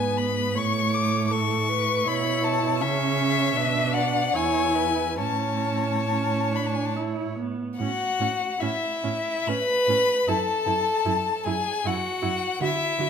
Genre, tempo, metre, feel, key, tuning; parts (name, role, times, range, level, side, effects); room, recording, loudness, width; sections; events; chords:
classical, slow romantic movement for string quartet; 66-81 BPM; 3/4; rubato; A major; A4 = 440 Hz
clear violin; melody; 0.0-13.1 s; E5 to D6; -26 LUFS; left 7 dB
rich violin; second line; 0.0-13.1 s; E4 to E5; -28 LUFS; equal
warm viola; accompaniment; 0.0-13.1 s; A3 to F#4; -30 LUFS; right 6 dB
warm cello; bass; 0.0-13.1 s; E2 to D3; -29 LUFS; right 4 dB
wet recital hall reverb, RT60 1.4 s; -22 LUFS; side -7 dB against mid
0.0-7.8 A section; 7.8-13.1 B section
0.0 E/G# (rootless); 0.6 A; 2.8 C#m; 3.6 Bm; 4.4 E; 5.2 A; 10.3 F#m7